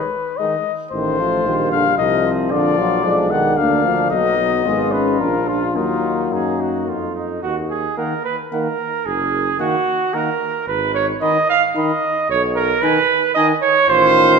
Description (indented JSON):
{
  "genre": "classical, brass quintet",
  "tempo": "112 BPM",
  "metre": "3/4",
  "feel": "straight",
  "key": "Eb minor",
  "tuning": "A4 = 441 Hz",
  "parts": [
    { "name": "mellow trumpet", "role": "melody", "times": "0.0-14.4 s", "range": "Eb4 to Cb6", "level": "-21 LUFS", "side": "left 7 dB", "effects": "none" },
    { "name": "warm trumpet", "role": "second line", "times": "0.0-14.4 s", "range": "C4 to F5", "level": "-18 LUFS", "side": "right 5 dB", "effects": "none" },
    { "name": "clear trombone", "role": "accompaniment", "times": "0.0-14.4 s", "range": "C3 to Ab3", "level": "-23 LUFS", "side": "right 2 dB", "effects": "none" },
    { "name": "warm French horn", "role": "accompaniment", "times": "0.4-14.4 s", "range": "F3 to F4", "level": "-24 LUFS", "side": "left 5 dB", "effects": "none" },
    { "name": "bright bass trombone", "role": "bass", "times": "0.9-14.4 s", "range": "Gb1 to Gb2", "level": "-25 LUFS", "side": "right 1 dB", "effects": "none" }
  ],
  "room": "wet scoring stage reverb, RT60 1.8 s",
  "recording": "minimal, uncompressed stereo recording",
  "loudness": "-16 LUFS",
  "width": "side -5 dB against mid",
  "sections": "0.0-7.4 A section; 7.4-14.4 B section",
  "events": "none",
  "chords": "0.0 Abm/Cb; 0.9 F7/A; 2.5 Bb; 4.1 B; 4.7 Abm; 5.2 Bb; 5.8 Ebm; 9.1 Ebm/Gb; 10.7 Abm; 12.3 Abm/Cb; 13.9 F7/A",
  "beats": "0.39 | 0.93 1.45 1.99 | 2.52 3.05 3.58 | 4.11 4.65 5.20 | 5.76 6.33 6.88 | 7.44 7.98 8.52 | 9.06 9.60 10.14 | 10.68 11.22 11.76 | 12.30 12.83 13.36 | 13.89"
}